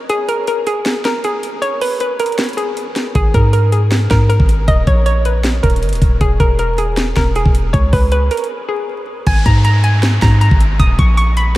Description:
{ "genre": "hip hop, trap", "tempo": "157 BPM", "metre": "4/4", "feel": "half-time", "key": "G# minor", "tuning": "A4 = 440 Hz", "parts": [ { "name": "hollow square pluck", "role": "melody", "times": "0.0-11.5 s", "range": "G#4 to D#6", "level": "-18 LUFS", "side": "equal", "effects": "chorus, tape echo" }, { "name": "trap drum kit", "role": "drums", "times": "0.1-11.5 s", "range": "crash cymbal, hi-hat, kick drum, snare drum", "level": "-16 LUFS", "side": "equal", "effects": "none" }, { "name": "warm 808-style bass", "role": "bass", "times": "3.2-11.6 s", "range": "D#1 to G#2", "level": "-13 LUFS", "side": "equal", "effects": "none" }, { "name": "downlifter", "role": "sound effects", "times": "9.3-11.6 s", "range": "none", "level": "-25 LUFS", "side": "equal", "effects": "none" } ], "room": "light reverb, digital ambience", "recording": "vinyl crackle", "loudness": "-12 LUFS", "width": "side -17 dB against mid", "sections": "0.0-9.3 A section; 9.3-11.6 B section", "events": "break 0.0-3.2, 8.5-9.3", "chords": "0.0 N.C.; 3.2 G#sus2; 4.7 D#5; 6.2 E; 7.7 C#5; 9.3 G#sus2; 10.8 D#5" }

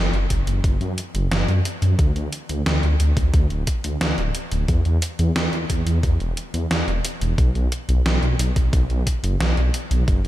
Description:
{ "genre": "synthwave", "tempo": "89 BPM", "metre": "4/4", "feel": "straight", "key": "unclear", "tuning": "A4 = 440 Hz", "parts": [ { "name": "dark detuned saw bass", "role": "bass", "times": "0.0-10.3 s", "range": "D1 to F#2", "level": "-20 LUFS", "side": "equal", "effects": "tube saturation, sidechain pumping" }, { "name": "gated 80s digital drum machine", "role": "drums", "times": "0.1-10.3 s", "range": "hi-hat, snare drum", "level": "-26 LUFS", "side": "equal", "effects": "gated reverb, gated reverb snare, overdrive" }, { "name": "electronic kick drum", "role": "drums", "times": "0.3-10.2 s", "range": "none", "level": "-20 LUFS", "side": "equal", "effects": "overdrive" } ], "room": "light reverb", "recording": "none", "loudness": "-18 LUFS", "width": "side -14 dB against mid", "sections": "0.0-10.3 A section", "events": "none", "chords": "none" }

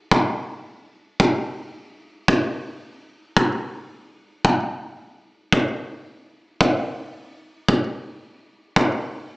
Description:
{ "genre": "blues", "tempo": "56 BPM (dotted quarters)", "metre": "12/8", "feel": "straight", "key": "none", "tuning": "none", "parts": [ { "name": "kick drum", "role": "drums", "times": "0.1-8.9 s", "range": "none", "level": "-19 LUFS", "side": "equal", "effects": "none" } ], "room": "little or no reverb", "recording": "small speaker sound", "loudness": "-20 LUFS", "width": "side -20 dB against mid", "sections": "0.0-9.4 A section", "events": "none", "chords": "none" }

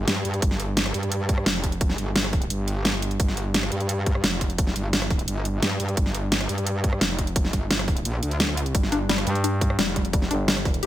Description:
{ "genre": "dark technical drum and bass", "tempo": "173 BPM", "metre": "4/4", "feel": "straight", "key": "unclear", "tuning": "A4 = 441 Hz", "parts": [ { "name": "metallic wobble bass", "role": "bass", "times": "0.0-10.3 s", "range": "F1 to G2", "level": "-26 LUFS", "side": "equal", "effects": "distortion, chorus, tube saturation, sidechain pumping" }, { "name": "dubstep drum kit", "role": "drums", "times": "0.1-10.9 s", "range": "hi-hat, rim click, snare drum", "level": "-25 LUFS", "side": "equal", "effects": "none" }, { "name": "electronic kick drum", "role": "drums", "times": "0.4-10.7 s", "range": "none", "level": "-24 LUFS", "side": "equal", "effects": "overdrive" }, { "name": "warbly dusty pluck", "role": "arpeggios", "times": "8.7-10.9 s", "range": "G3 to G4", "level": "-28 LUFS", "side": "left 4 dB", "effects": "chorus, sidechain pumping, digital delay" }, { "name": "growling FM bass", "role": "bass", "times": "9.3-10.9 s", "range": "G1 to G2", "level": "-24 LUFS", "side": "equal", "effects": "tube saturation" } ], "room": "digital ambience", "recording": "none", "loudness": "-21 LUFS", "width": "side -13 dB against mid", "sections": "0.0-10.9 A section", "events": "none", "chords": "none" }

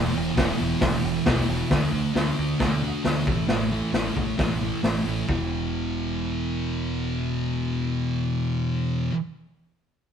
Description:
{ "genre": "garage rock duo or trio", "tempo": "134 BPM", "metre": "4/4", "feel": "straight", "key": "unclear", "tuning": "A4 = 440 Hz", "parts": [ { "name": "thick fuzz guitar", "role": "riff", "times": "0.0-9.1 s", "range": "E2 to D4", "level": "-25 LUFS", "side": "right 1 dB", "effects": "distortion" }, { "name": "growling picked electric bass", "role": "bass", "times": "0.0-9.1 s", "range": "E1 to D2", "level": "-32 LUFS", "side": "equal", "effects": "overdrive" }, { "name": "raw garage drum kit", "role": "drums", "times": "0.4-5.4 s", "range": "hi-hat, kick drum, snare drum", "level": "-25 LUFS", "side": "left 1 dB", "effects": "none" } ], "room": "light reverb", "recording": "band playing live in one room", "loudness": "-22 LUFS", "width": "side -8 dB against mid", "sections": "0.0-1.7 A section; 1.7-5.3 B section; 5.3-8.9 C section", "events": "none", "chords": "0.0 E5; 1.7 D5; 3.3 A5; 5.3 E5" }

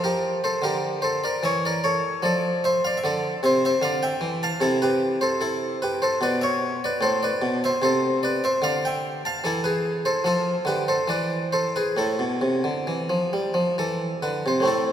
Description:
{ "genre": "classical, baroque-style suite movement for harpsichord", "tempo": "66-77 BPM", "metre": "3/4", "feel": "rubato", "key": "D minor, A minor from 4.6 s", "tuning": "A4 = 443 Hz", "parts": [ { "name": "harpsichord", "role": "solo", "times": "0.0-14.9 s", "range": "A2 to A5", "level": "-21 LUFS", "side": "equal", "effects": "none" } ], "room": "wet church reverb, RT60 3.7 s", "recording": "none", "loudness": "-21 LUFS", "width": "side -9 dB against mid", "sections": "0.0-14.6 A section", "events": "none", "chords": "0.0 Dm/F; 1.4 A/E; 2.2 Dm; 4.6 Am/C; 6.2 Bmadd9; 7.0 Am; 8.6 Dmadd9; 9.4 E; 10.2 F; 11.1 E7; 12.0 Am" }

